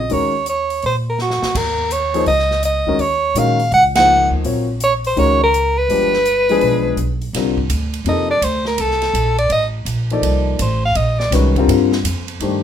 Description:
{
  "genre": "modal jazz",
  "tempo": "166 BPM",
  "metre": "4/4",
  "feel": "swing 65% on 8ths",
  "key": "C dorian from 7.3 s",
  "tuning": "A4 = 440 Hz",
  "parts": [
    { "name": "warm soprano saxophone", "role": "melody", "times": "0.0-11.3 s", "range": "Gb4 to Gb5", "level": "-16 LUFS", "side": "right 1 dB", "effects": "none" },
    { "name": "upright bass", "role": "bass", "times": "0.0-12.6 s", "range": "G1 to Bb2", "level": "-20 LUFS", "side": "equal", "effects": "none" },
    { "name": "warm grand piano", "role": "accompaniment", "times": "0.1-12.6 s", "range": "C3 to D5", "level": "-19 LUFS", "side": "left 5 dB", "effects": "none" },
    { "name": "swinging big-band drum kit", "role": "drums", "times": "0.1-12.5 s", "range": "crash cymbal, hi-hat, kick drum, ride cymbal, snare drum", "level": "-27 LUFS", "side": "right 2 dB", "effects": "none" }
  ],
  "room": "moderate club reverb, RT60 0.6 s",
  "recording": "minimal, uncompressed stereo recording",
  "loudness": "-14 LUFS",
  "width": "side -9 dB against mid",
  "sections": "0.0-7.3 A section; 7.3-12.6 B section",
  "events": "drum fill 1.2-1.5; band accent 3.9; soprano saxophone solo 7.3-12.6",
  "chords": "0.0 Ebm11; 1.5 Gb; 5.9 G7b9; 7.3 Cm11"
}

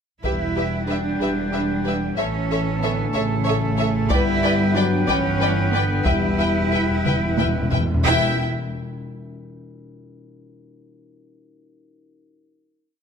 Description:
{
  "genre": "cinematic, epic orchestral film score",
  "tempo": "61 BPM (dotted quarters)",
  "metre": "6/8",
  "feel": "straight",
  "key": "E dorian",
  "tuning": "A4 = 440 Hz",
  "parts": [
    { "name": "warm symphonic violin section", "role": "melody", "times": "0.2-8.4 s", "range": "E5 to G5", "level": "-30 LUFS", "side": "left 2 dB", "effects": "none" },
    { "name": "clear symphonic violin section", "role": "second line", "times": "0.2-8.4 s", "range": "B4 to E5", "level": "-30 LUFS", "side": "left 2 dB", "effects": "none" },
    { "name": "rich symphonic viola section", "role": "accompaniment", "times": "0.2-8.4 s", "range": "E4 to B4", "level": "-30 LUFS", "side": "equal", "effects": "none" },
    { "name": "dark French horn section", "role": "sustained chords", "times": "0.2-8.4 s", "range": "C#3 to E4", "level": "-26 LUFS", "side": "left 4 dB", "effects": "none" },
    { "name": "rich studio cello section", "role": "bass", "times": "0.2-8.4 s", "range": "A3 to E4", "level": "-25 LUFS", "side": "right 3 dB", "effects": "none" },
    { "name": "rich symphonic double bass section", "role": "bass", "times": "0.2-8.4 s", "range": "E1 to A1", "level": "-26 LUFS", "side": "right 3 dB", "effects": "none" },
    { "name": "taiko ensemble", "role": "drums", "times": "0.2-8.2 s", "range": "none", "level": "-26 LUFS", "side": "equal", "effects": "none" },
    { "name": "clear woodwind section", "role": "sustained chords", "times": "0.3-8.4 s", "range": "B3 to A5", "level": "-29 LUFS", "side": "left 1 dB", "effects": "none" },
    { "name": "timpani", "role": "percussion", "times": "0.3-1.2, 6.1-8.4 s", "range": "E2", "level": "-27 LUFS", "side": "left 1 dB", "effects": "none" }
  ],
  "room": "moderate recital hall reverb, RT60 1.7 s",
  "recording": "none",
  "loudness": "-18 LUFS",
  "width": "side -7 dB against mid",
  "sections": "0.2-8.1 theme; 8.1-10.1 final chord",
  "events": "timpani fill 6.1-8.1; drum fill 7.1-8.1",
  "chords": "0.2 Em; 2.2 A; 4.1 G; 6.1 Em"
}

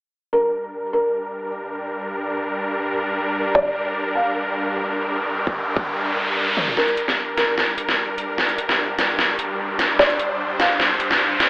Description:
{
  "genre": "heavy wobble dubstep",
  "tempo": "149 BPM",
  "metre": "4/4",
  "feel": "swing 54% on 16ths, half-time",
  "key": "G minor",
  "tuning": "A4 = 441 Hz",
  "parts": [
    { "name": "felt-muted upright piano", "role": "melody", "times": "0.3-11.1 s", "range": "Bb4 to F5", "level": "-21 LUFS", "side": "equal", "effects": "low-pass filter, tape echo" },
    { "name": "supersaw chords", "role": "sustained chords", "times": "0.3-11.5 s", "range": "G2 to C5", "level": "-24 LUFS", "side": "equal", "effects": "sidechain pumping, low-pass filter" },
    { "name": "electronic kick drum", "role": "drums", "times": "3.5-5.9 s", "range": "none", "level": "-25 LUFS", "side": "equal", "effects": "overdrive" },
    { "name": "riser", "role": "sound effects", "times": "4.7-11.5 s", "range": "none", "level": "-26 LUFS", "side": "equal", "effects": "none" },
    { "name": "dubstep drum kit", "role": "drums", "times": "6.6-11.5 s", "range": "hi-hat, snare drum, toms", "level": "-19 LUFS", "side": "equal", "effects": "overdrive, high-pass filter on toms, low-pass filter on toms, high-pass filter on snare, low-pass filter on snare, high-pass filter on hats, low-pass filter on hats, high-pass filter on room, low-pass filter on room" }
  ],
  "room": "moderate digital room reverb, RT60 1.1 s",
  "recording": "telephone sound",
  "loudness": "-19 LUFS",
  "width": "side -34 dB against mid",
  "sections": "0.3-6.8 A section; 6.8-11.5 B section",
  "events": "filter sweep on supersaw synth 0.3-6.8; riser 4.7-6.8, 6.8-11.5; drum fill 6.6, 6.8-11.5; build-up 6.8-11.5; filter sweep on felt piano 6.8-11.5",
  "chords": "0.3 Gm"
}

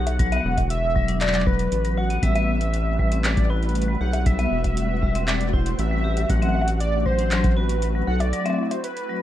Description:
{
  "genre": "IDM",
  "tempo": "118 BPM",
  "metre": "4/4",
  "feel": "straight",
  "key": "A dorian",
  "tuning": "A4 = 440 Hz",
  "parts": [
    { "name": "warm velvety synth lead", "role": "melody", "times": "0.0-9.2 s", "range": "B4 to F#5", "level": "-27 LUFS", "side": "right 1 dB", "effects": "chorus, ping-pong delay" },
    { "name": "hollow soft pad", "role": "sustained chords", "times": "0.0-9.2 s", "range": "D3 to B4", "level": "-31 LUFS", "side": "left 1 dB", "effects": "ensemble chorus" },
    { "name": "round analog bass", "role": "bass", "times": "0.0-8.3 s", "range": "E1 to B1", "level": "-23 LUFS", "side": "equal", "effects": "none" },
    { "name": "electro analog drum machine", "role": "drums", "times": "0.1-9.1 s", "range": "bongos, handclaps, hi-hat", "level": "-29 LUFS", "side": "left 1 dB", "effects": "none" },
    { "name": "vibraphone with hard mallets", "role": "arpeggios", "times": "0.2-9.2 s", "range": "F#3 to A4", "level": "-28 LUFS", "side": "left 3 dB", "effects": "ping-pong delay" },
    { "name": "electronic kick drum", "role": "drums", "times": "0.2-7.5 s", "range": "none", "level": "-23 LUFS", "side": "equal", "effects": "none" },
    { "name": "flickering grainy texture", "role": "texture", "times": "3.4-9.2 s", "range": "F#4 to F#5", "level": "-38 LUFS", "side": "left 1 dB", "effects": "built-in reverb" }
  ],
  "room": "light reverb",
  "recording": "rough home demo mix",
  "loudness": "-20 LUFS",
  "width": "side -12 dB against mid",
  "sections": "0.0-9.2 A section",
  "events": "break 8.3-9.2",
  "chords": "0.0 Gmaj7 (rootless); 2.2 Am9; 6.3 D7/A"
}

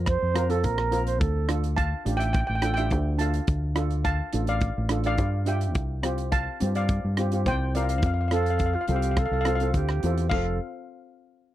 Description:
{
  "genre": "calypso",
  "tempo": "106 BPM",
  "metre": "4/4",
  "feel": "straight",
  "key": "F major",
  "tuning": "A4 = 440 Hz",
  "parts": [
    { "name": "steel pan", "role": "melody", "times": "0.0-10.6 s", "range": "C5 to C6", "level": "-30 LUFS", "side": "left 2 dB", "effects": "none" },
    { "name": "steel pan", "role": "accompaniment", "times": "0.0-10.6 s", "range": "C4 to Bb4", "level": "-32 LUFS", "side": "equal", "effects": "none" },
    { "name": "fingered electric bass", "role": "bass", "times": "0.0-10.6 s", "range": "F1 to G2", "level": "-26 LUFS", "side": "equal", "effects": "none" },
    { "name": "mellow wooden flute", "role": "second line", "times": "0.1-1.6, 8.3-10.6 s", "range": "F4 to C5", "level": "-28 LUFS", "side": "right 7 dB", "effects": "none" },
    { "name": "loose indie drum kit", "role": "drums", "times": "0.1-10.4 s", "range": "crash cymbal, hi-hat, kick drum, rim click", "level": "-29 LUFS", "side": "equal", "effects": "none" }
  ],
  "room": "little or no reverb",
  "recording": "dry, close 1970s-style studio recording",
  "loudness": "-23 LUFS",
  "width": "side -13 dB against mid",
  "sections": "0.0-10.3 A section; 10.3-11.5 B section",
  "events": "none",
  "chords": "0.0 Bbsus2; 1.2 Dm; 5.8 Csus4; 8.0 Fadd9; 10.3 F"
}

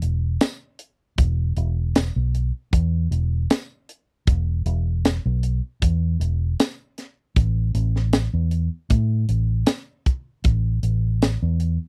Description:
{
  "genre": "straight-eighth soul blues",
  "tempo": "78 BPM",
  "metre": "4/4",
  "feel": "swing 54% on 16ths",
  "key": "unclear",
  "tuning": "A4 = 440 Hz",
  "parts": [
    { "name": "vintage muted fingered electric bass", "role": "bass", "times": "0.0-11.8 s", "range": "E1 to A2", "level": "-23 LUFS", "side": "equal", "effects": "none" },
    { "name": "tight funk drum kit", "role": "drums", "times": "0.0-11.8 s", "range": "hi-hat, kick drum, snare drum, tambourine", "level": "-22 LUFS", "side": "equal", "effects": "none" }
  ],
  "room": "little or no reverb",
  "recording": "dry, close 1970s-style studio recording",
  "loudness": "-22 LUFS",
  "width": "mono",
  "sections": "0.0-10.5 A section; 10.5-11.9 B section",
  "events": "none",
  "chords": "none"
}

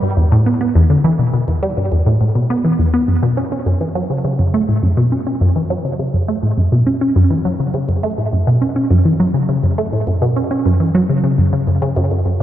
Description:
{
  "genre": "ambient",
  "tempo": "103 BPM",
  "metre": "4/4",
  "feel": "straight",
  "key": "unclear",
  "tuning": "A4 = 440 Hz",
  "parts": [
    { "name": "resonant blip pluck", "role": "solo", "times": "0.0-12.4 s", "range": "E2 to C#4", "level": "-13 LUFS", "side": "equal", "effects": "phaser, tape echo" }
  ],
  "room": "moderate lush hall reverb, RT60 2.8 s",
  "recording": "dark, warm production",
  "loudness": "-13 LUFS",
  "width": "side -12 dB against mid",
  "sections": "0.0-12.4 A section",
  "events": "none",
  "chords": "none"
}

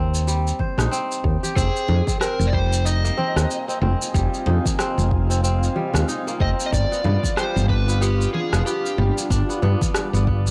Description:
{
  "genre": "organic downtempo",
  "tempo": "93 BPM",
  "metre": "4/4",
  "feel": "swing 59% on 16ths",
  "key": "unclear",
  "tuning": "A4 = 440 Hz",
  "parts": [
    { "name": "kora", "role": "arpeggios", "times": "0.0-10.5 s", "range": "G3 to C5", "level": "-30 LUFS", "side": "equal", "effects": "tape echo" },
    { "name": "woody fretless electric bass", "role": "bass", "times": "0.0-10.5 s", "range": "F1 to G2", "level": "-22 LUFS", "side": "equal", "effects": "tube saturation" },
    { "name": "electronic shaker and rim click", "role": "drums", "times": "0.1-10.5 s", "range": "none", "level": "-30 LUFS", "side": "equal", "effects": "none" },
    { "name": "electronic kick drum", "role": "drums", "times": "0.6-10.4 s", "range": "none", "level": "-27 LUFS", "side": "equal", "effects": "none" },
    { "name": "congas", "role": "percussion", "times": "0.6-10.5 s", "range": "none", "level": "-33 LUFS", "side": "equal", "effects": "none" },
    { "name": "overdriven slide guitar", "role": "melody", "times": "1.6-9.1 s", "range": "G4 to Eb5", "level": "-30 LUFS", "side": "equal", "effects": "tape echo" },
    { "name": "granular cloud pad", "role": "sustained chords", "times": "3.3-10.5 s", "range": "G3 to Ab5", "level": "-33 LUFS", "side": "equal", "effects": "built-in reverb, sidechain pumping" }
  ],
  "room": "little or no reverb",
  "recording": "dry, gritty hardware recording, cassette tape",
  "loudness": "-21 LUFS",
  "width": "mono",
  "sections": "0.0-10.5 A section",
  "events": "none",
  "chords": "0.0 Eb; 1.6 Fm7; 6.7 G7"
}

